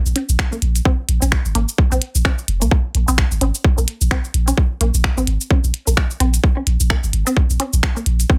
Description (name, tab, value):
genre	minimal techno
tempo	129 BPM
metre	4/4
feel	swing 58% on 16ths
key	Bb minor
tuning	A4 = 440 Hz
part	punchy sub bass	bass	0.1-8.2 s	F1 to C2	-19 LUFS	equal	sidechain pumping
part	minimal click drum kit	drums	0.1-8.3 s	finger snaps, hi-hat, shaker	-25 LUFS	equal	overdrive, soft clipping on snare
part	resonant blip pluck	riff	0.2-8.4 s	Bb3 to Db4	-26 LUFS	equal	chorus, phaser, sidechain pumping, digital delay
part	electronic kick drum	drums	0.4-8.4 s	none	-19 LUFS	equal	overdrive
room	little or no reverb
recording	dense, heavily limited modern master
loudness	-18 LUFS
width	mono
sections	0.0-8.4 A section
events	none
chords	none